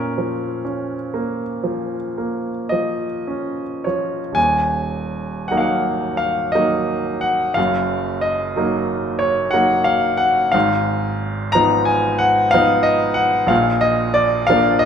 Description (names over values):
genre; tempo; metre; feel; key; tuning
classical, romantic nocturne for solo piano; 33-63 BPM (dotted quarters); 9/8; rubato; Bb minor, Eb minor from 4.4 s; A4 = 440 Hz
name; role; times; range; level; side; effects
clear grand piano; solo; 0.0-14.9 s; Eb1 to Bb5; -16 LUFS; equal; none
room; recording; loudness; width
wet recital hall reverb, RT60 1.2 s; none; -16 LUFS; side -7 dB against mid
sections
0.0-4.4 A section; 4.4-14.9 B section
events
none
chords
0.0 Bbm; 4.4 Ebm; 7.6 Ebm/Gb; 10.5 Fm7b5/Ab; 13.5 Bb